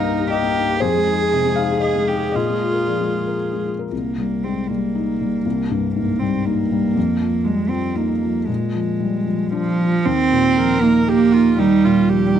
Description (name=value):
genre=neoclassical piano and strings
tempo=118 BPM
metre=3/4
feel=rubato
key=C minor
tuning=A4 = 440 Hz
part: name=warm cello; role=second line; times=0.0-12.3 s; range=F3 to Ab4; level=-19 LUFS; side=right 5 dB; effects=slapback echo
part: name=felt-muted upright piano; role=accompaniment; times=0.0-12.4 s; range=C2 to G5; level=-21 LUFS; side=left 7 dB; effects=none
part: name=warm viola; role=accompaniment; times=0.0-3.7, 10.6-12.4 s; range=Eb4 to Bb4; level=-24 LUFS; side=right 2 dB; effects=none
room=light reverb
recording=dry, close 1970s-style studio recording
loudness=-16 LUFS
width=side -9 dB against mid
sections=0.0-3.9 A section; 3.9-10.1 B section; 10.1-12.4 C section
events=none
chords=0.0 Cm7; 0.8 Fm7; 2.3 Bb7; 3.9 Cm7; 7.0 F7(no3); 8.5 Bb7; 10.1 Ebadd9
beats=0.31 | 0.82 1.32 1.82 | 2.34 2.87 3.39 | 3.92 4.43 4.94 | 5.45 5.95 6.46 | 6.96 7.46 7.97 | 8.49 9.01 9.53 | 10.06 10.58 11.09 | 11.59 12.10